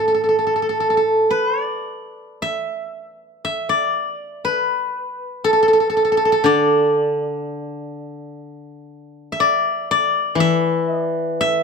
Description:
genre	chinese traditional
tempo	51-63 BPM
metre	4/4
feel	rubato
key	unclear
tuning	A4 = 440 Hz
part	steel-string zither	solo	0.0-11.6 s	A2 to E5	-17 LUFS	equal	none
room	light reverb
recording	close, detailed microphones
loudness	-16 LUFS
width	side -5 dB against mid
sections	0.0-2.4 A section; 2.4-11.6 B section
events	none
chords	none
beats	0.12 1.25 | 2.37 3.42 4.43 5.44 | 6.44 7.42 8.40 9.38 | 10.37 11.36

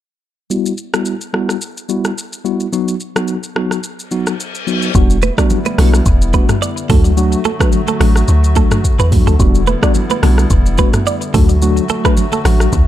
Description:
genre	afrobeats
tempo	108 BPM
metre	4/4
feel	swing 55% on 16ths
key	E minor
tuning	A4 = 441 Hz
part	mellow tine electric piano	accompaniment	0.5-12.7 s	F#3 to F#4	-18 LUFS	left 2 dB	medium stereo tremolo, low-pass filter
part	afro-pop drum kit	drums	0.5-12.9 s	hi-hat, kick drum, rim click, shaker, toms	-16 LUFS	equal	none
part	reverse cymbal	sound effects	4.2-4.9 s	none	-25 LUFS	left 6 dB	none
part	hollow soft pad	sustained chords	4.9-12.9 s	D3 to F#4	-23 LUFS	left 1 dB	chorus
part	deep log drum bass	bass	4.9-12.9 s	E1 to E2	-12 LUFS	equal	none
part	direct-recorded clean electric guitar	riff	5.2-12.6 s	F#4 to D5	-21 LUFS	right 7 dB	analog chorus, ping-pong delay
part	congas	percussion	5.2-12.6 s	none	-24 LUFS	right 7 dB	none
room	little or no reverb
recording	dark, warm production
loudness	-12 LUFS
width	side -12 dB against mid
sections	0.5-5.0 A section; 5.0-12.9 B section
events	filter sweep on tine electric piano 0.5-5.0; reverse cymbal 4.2-5.0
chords	0.5 Emadd9; 2.7 B; 5.0 Em7; 6.9 D; 9.4 Em7; 11.3 D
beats	| 0.51 1.06 1.62 2.17 | 2.73 3.28 3.84 4.39 | 4.95 5.51 6.06 6.62 | 7.17 7.73 8.28 8.84 | 9.39 9.95 10.51 11.06 | 11.62 12.17 12.73

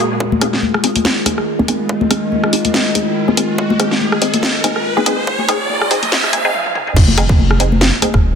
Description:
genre	deep dubstep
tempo	142 BPM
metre	4/4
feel	swing 56% on 16ths, half-time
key	F minor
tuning	A4 = 440 Hz
part	overtone-sweeping drone	sustained chords	0.0-6.9 s	Bb2 to Gb4	-20 LUFS	equal	chorus, built-in reverb
part	filtered dub chord stab	stabs	0.0-8.1 s	C4 to Ab4	-20 LUFS	equal	phaser, dub echo
part	noise sweep, riser and impact	sound effects	0.0-8.4 s	none	-22 LUFS	right 1 dB	none
part	electronic kick drum	drums	0.2-8.2 s	none	-14 LUFS	equal	high-pass filter on kick
part	congas and bongos	percussion	0.3-8.1 s	none	-21 LUFS	left 6 dB	dub echo
part	garage drum kit	drums	0.4-8.2 s	crash cymbal, hi-hat, rim click, snare drum, toms	-17 LUFS	equal	none
part	saturated sub bass	bass	7.0-8.4 s	Eb1 to F1	-15 LUFS	equal	tube saturation
room	light reverb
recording	dense, heavily limited modern master, high-pass filter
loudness	-12 LUFS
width	side -7 dB against mid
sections	0.2-7.0 A section; 7.0-8.4 B section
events	noise sweep 0.0, 5.3-7.0; build-up 0.2-7.0; riser 0.2-6.5; filter sweep on synth stab 0.2-7.0; break 6.5-7.0; drum fill 6.5-7.0; drop 7.0-8.4; impact 7.0-8.4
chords	0.2 Fm7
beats	| 0.20 0.63 1.05 1.47 | 1.89 2.32 2.74 3.16 | 3.58 4.01 4.43 4.85 | 5.28 5.70 6.12 6.54 | 6.96 7.39 7.81 8.23

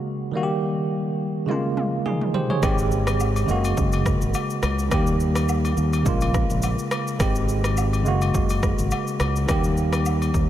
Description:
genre	afrobeats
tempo	105 BPM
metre	4/4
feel	swing 55% on 16ths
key	unclear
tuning	A4 = 438 Hz
part	bell-like tine electric piano	accompaniment	0.0-10.5 s	Db3 to Db5	-24 LUFS	right 2 dB	medium stereo tremolo
part	deep house drum kit	drums	1.5-10.5 s	kick drum, rim click, shaker, toms	-26 LUFS	equal	overdrive
part	modern bright fingered electric bass	bass	2.6-10.5 s	Gb1 to Eb2	-23 LUFS	left 1 dB	none
part	agogo bells and woodblock	percussion	2.6-10.3 s	none	-31 LUFS	left 5 dB	none
room	moderate cathedral reverb, RT60 5.5 s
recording	dreamy mix soaked in reverb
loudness	-20 LUFS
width	side -12 dB against mid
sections	0.0-10.5 A section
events	drum fill 1.5-2.6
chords	0.3 Eb; 1.5 Bbm7; 2.6 Abmaj7; 3.5 Gbadd9; 4.9 Eb; 6.1 Bbm7; 7.2 Abmaj7; 8.1 Gbadd9; 9.5 Eb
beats	| 0.34 0.91 1.49 2.06 | 2.63 3.20 3.77 4.34 | 4.91 5.49 6.06 6.63 | 7.20 7.77 8.34 8.91 | 9.48 10.06

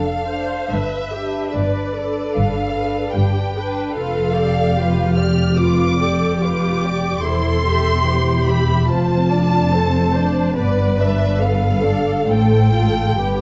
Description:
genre	classical, slow romantic movement for string orchestra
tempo	73 BPM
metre	4/4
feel	uneven beats, rubato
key	unclear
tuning	A4 = 440 Hz
part	rich studio violin section	melody	0.0-13.4 s	D5 to F6	-26 LUFS	equal	none
part	dark studio violin section	second line	0.0-13.4 s	B3 to E5	-27 LUFS	equal	none
part	warm studio viola section	accompaniment	0.0-13.4 s	F4 to C5	-26 LUFS	equal	none
part	warm studio cello section	bass	0.0-13.4 s	E2 to A2	-23 LUFS	equal	none
part	warm studio double bass section	bass	0.0-13.4 s	E1 to A1	-24 LUFS	equal	none
room	moderate recital hall reverb, RT60 1.6 s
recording	dark, warm production, nothing above 7.9 kHz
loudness	-18 LUFS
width	mono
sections	0.0-13.4 A section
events	none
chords	0.0 Dm/F; 0.7 G; 4.0 G7/F; 7.2 C/E; 8.9 Dm7/F; 10.6 G; 12.3 F/A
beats	| 0.71 1.55 2.36 3.15 | 3.96 4.76 5.57 6.40 | 7.23 8.05 8.89 9.73 | 10.57 11.41 12.27 13.18

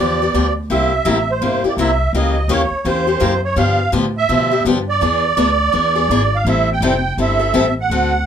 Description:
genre	acoustic string swing (jazz manouche)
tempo	167 BPM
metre	4/4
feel	swing 63% on 8ths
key	unclear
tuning	A4 = 438 Hz
part	musette accordion	melody	0.0-8.3 s	C5 to G5	-17 LUFS	right 4 dB	none
part	picked steel-string acoustic guitar	accompaniment	0.0-8.1 s	C3 to A4	-18 LUFS	left 4 dB	none
part	upright bass	bass	0.0-8.2 s	F1 to B2	-20 LUFS	equal	none
room	moderate club reverb, RT60 0.5 s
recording	minimal, uncompressed stereo recording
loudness	-14 LUFS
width	side -8 dB against mid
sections	0.0-8.3 A section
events	none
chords	0.0 G7; 0.7 C7; 2.1 C#dim7; 3.6 G7; 5.0 E7; 6.5 Am7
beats	0.34 | 0.70 1.06 1.42 1.78 | 2.14 2.50 2.86 3.22 | 3.58 3.94 4.30 4.66 | 5.02 5.38 5.74 6.10 | 6.46 6.82 7.17 7.54 | 7.89 8.25

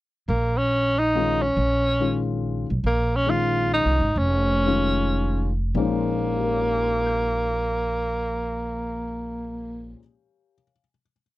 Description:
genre	modal jazz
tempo	98-141 BPM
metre	3/4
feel	swing 67% on 8ths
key	Bb dorian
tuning	A4 = 440 Hz
part	warm tenor saxophone	melody	0.3-10.0 s	Bb3 to F4	-23 LUFS	right 1 dB	none
part	upright bass	bass	0.3-9.9 s	F1 to C2	-26 LUFS	right 1 dB	none
part	dark grand piano	accompaniment	1.1-11.2 s	Bb2 to G6	-28 LUFS	left 6 dB	none
room	little or no reverb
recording	dry, close 1970s-style studio recording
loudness	-21 LUFS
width	side -17 dB against mid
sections	0.3-5.8 A section; 5.8-9.4 final chord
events	slowing down 2.8-5.8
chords	0.3 Bbm11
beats	| 0.29 0.72 1.14 | 1.57 1.99 2.42 | 2.84 3.27 3.71 | 4.17 4.66 5.18 | 5.76 6.37 6.97 | 7.58 8.19 8.80

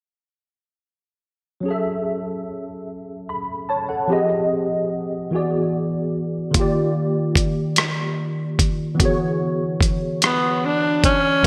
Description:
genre	slow six-eight R&B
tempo	49 BPM (dotted quarters)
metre	6/8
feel	straight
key	unclear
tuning	A4 = 440 Hz
part	tine electric piano	accompaniment	1.6-11.5 s	D3 to B5	-24 LUFS	equal	ensemble chorus
part	dusty soul sampler-style drum kit	drums	6.5-11.5 s	hi-hat, kick drum, rim click	-22 LUFS	equal	overdrive, gated reverb
part	breathy tenor saxophone	melody	10.2-11.5 s	B3 to D4	-20 LUFS	equal	none
room	wet lush hall reverb, RT60 2.0 s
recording	bright 1980s-style digital production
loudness	-21 LUFS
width	mono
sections	1.6-11.4 A section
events	none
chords	1.6 F#m7; 4.1 Fm9; 5.3 E9; 6.5 D#maj9; 9.0 E13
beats	| 1.65 2.87 | 4.10 5.32 | 6.55 7.77 | 9.00 10.22 | 11.45

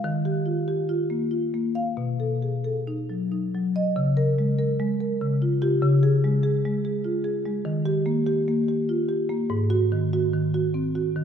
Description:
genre	classical, contemporary piece for solo marimba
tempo	89-100 BPM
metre	3/4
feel	rubato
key	Db lydian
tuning	A4 = 439 Hz
part	marimba with soft mallets	solo	0.0-11.2 s	Ab2 to F5	-22 LUFS	equal	none
room	wet church reverb, RT60 3.0 s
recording	recorded in a church or concert hall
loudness	-22 LUFS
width	side -8 dB against mid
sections	0.0-4.0 A section; 4.0-11.2 B section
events	none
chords	0.0 Ebadd9; 2.0 Cb7; 4.0 Db5; 5.2 Db; 5.8 Fm/Db; 7.7 Ebadd9; 9.5 Ab7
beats	| 0.04 0.67 1.30 | 1.97 2.64 3.31 | 3.96 4.58 5.21 | 5.83 6.45 7.06 | 7.66 8.28 8.89 | 9.50 10.12 10.74

